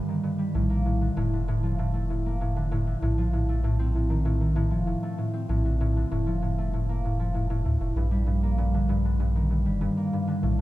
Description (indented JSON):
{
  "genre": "folktronica",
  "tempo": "97 BPM",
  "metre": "4/4",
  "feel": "straight",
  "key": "Bb major",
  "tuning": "A4 = 440 Hz",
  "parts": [
    { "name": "concert harp", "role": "arpeggios", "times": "0.0-10.6 s", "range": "G2 to C4", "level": "-26 LUFS", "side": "equal", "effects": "ping-pong delay" },
    { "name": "warm sub bass", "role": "bass", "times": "0.5-10.6 s", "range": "F1 to D2", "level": "-26 LUFS", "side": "equal", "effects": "none" }
  ],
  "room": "light reverb, studio reverb",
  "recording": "none",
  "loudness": "-24 LUFS",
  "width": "side -16 dB against mid",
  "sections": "0.0-10.6 A section",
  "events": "none",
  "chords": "0.0 Ebmaj7; 0.5 Bbmaj7; 3.0 F7/Bb; 5.5 Bbmaj7; 8.0 Ebmaj7/Bb"
}